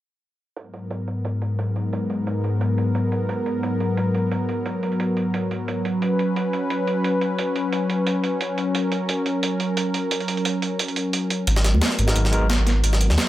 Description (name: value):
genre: liquid drum and bass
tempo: 176 BPM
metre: 4/4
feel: swing 53% on 16ths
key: G# minor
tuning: A4 = 440 Hz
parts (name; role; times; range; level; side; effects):
- warm analog pad; sustained chords; 0.6-13.3 s; G#2 to B4; -22 LUFS; equal; chorus
- breakbeat sampler-style drum kit; drums; 0.6-13.3 s; hi-hat, snare drum; -29 LUFS; right 3 dB; low-pass filter on hats, low-pass filter on snare
- dark detuned saw bass; bass; 11.5-13.2 s; G#1 to D#2; -19 LUFS; equal; none
- jungle sampler-style drum kit; drums; 11.5-13.3 s; hi-hat, snare drum; -25 LUFS; equal; high-pass filter on hats, high-pass filter on snare
- congas; percussion; 11.7-11.8 s; none; -29 LUFS; right 2 dB; none
- overdriven tine electric piano; accompaniment; 12.1-12.5 s; G#3 to A#4; -27 LUFS; equal; medium tremolo, ping-pong delay
room: light reverb, digital ambience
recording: none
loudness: -20 LUFS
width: side -14 dB against mid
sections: 0.6-13.3 A section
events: filter sweep on drum 0.6-13.3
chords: 0.6 G#m9; 5.8 C#7sus4; 11.5 G#m9